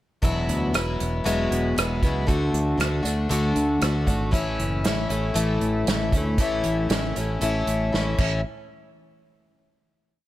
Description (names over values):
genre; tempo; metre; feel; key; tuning
folk rock and heartland rock; 117 BPM; 4/4; straight; A major; A4 = 438 Hz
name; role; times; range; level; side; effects
picked plugged-in twelve-string acoustic guitar; accompaniment; 0.2-8.4 s; E2 to F#4; -24 LUFS; left 2 dB; none
modern bright fingered electric bass; bass; 0.2-8.4 s; E1 to D2; -27 LUFS; right 1 dB; none
unplugged drum kit; drums; 0.2-8.3 s; crash cymbal, hi-hat, kick drum, rim click, snare drum; -26 LUFS; right 1 dB; none
room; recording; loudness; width
studio reverb; none; -21 LUFS; side -14 dB against mid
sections
0.2-8.4 verse; 8.4-10.3 final hit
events
drum fill 7.9-8.4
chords
0.2 Eadd9; 2.3 D; 4.3 A; 8.4 N.C.